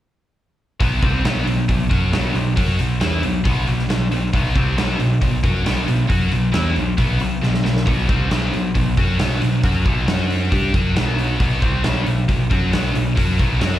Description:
hard rock; 136 BPM; 4/4; straight; A4 = 436 Hz
scooped high-gain guitar; riff; 0.8-13.8 s; B2 to G4; -22 LUFS; left 1 dB; distortion, slapback echo
growling picked electric bass; bass; 0.8-13.8 s; B1 to G2; -20 LUFS; equal; overdrive
huge arena drum kit; drums; 0.8-13.7 s; hi-hat, kick drum, snare drum; -21 LUFS; equal
light reverb; live gig heard through the venue's PA, club reverb; -16 LUFS; side -13 dB against mid
0.8-13.8 A section
drum fill 7.4-7.9
0.8 B5; 10.1 F#5; 10.5 B5

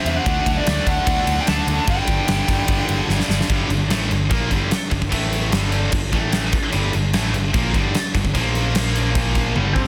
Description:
hard rock; 148 BPM; 4/4; straight; G minor; A4 = 440 Hz
lead guitar through a small cranked amp; melody; 0.0-3.3, 9.7-9.9 s; C4 to A5; -27 LUFS; equal; overdrive, digital delay
distorted electric guitar; riff; 0.0-9.9 s; G2 to D4; -32 LUFS; equal
heavy high-gain guitar; riff; 0.0-9.9 s; G2 to D4; -28 LUFS; equal; distortion
tight distorted guitar; riff; 0.0-9.9 s; G2 to D4; -29 LUFS; equal; distortion
fingered electric bass; bass; 0.0-9.9 s; G1 to E2; -26 LUFS; equal
huge arena drum kit; drums; 0.1-9.9 s; crash cymbal, kick drum, ride cymbal, snare drum, toms; -24 LUFS; equal
small room ambience; dense, heavily limited modern master; -20 LUFS; mono
0.0-3.5 A section; 3.5-9.9 B section
drum fill 3.1-3.5, 9.6-9.9
0.3 D; 1.9 G5; 3.5 Gm; 5.1 A5; 5.5 G5; 6.1 A5; 6.5 Gm; 8.3 Bb5

